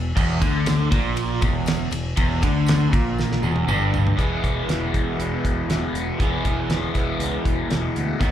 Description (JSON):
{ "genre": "classic rock", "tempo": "119 BPM", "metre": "4/4", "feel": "straight", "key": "E major", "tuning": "A4 = 440 Hz", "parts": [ { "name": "overdriven electric guitar", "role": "riff", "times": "0.0-8.3 s", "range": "E2 to G#4", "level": "-26 LUFS", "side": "right 9 dB", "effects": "none" }, { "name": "overdriven semi-hollow guitar", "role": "riff", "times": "0.0-8.3 s", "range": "E2 to F#4", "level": "-25 LUFS", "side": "left 7 dB", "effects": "phaser, slapback echo" }, { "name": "growling fingered electric bass", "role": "bass", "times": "0.0-8.3 s", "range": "E1 to D#2", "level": "-26 LUFS", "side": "equal", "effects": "overdrive" }, { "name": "damped 70s drum kit", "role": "drums", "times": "0.2-8.3 s", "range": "crash cymbal, hi-hat, kick drum, ride cymbal, snare drum, toms", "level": "-24 LUFS", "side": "equal", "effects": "none" }, { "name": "tambourine", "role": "percussion", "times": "0.4-4.1 s", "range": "none", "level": "-44 LUFS", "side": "right 3 dB", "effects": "none" } ], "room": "light reverb", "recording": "live gig heard through the venue's PA, club reverb", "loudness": "-19 LUFS", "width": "side -10 dB against mid", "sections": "0.0-4.2 A section; 4.2-8.3 B section", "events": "drum fill 3.2-4.2", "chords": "0.0 Em7b5; 4.2 E", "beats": "| 0.16 0.66 1.17 1.67 | 2.17 2.67 3.18 3.68 | 4.18 4.69 5.19 5.69 | 6.20 6.70 7.20 7.70 | 8.20" }